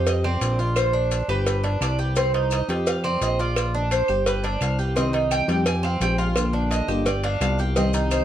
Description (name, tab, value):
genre	latin, Cuban son and guajira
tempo	172 BPM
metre	4/4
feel	straight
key	unclear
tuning	A4 = 440 Hz
part	Cuban tres	melody	0.0-8.2 s	B4 to Ab5	-26 LUFS	right 2 dB	tape echo
part	Cuban tres	arpeggios	0.0-8.2 s	C4 to G4	-27 LUFS	right 2 dB	none
part	fat analog bass	bass	0.0-8.2 s	G1 to F2	-24 LUFS	equal	none
part	cowbell	percussion	0.1-8.2 s	none	-29 LUFS	right 1 dB	none
part	maracas	percussion	0.1-8.2 s	none	-37 LUFS	left 8 dB	none
part	claves	percussion	0.2-8.2 s	none	-35 LUFS	right 6 dB	none
part	nylon-string guitar	accompaniment	5.0-8.2 s	C3 to G4	-26 LUFS	left 3 dB	none
room	light reverb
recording	dark, warm production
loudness	-20 LUFS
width	side -11 dB against mid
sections	0.0-8.2 A section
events	none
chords	0.1 Fsus2; 0.8 Bb; 1.5 G; 2.2 Cm; 2.9 Fsus2; 3.6 Bb; 4.3 G5; 5.0 Cm; 5.7 Fmadd9; 6.4 Bb; 7.1 G7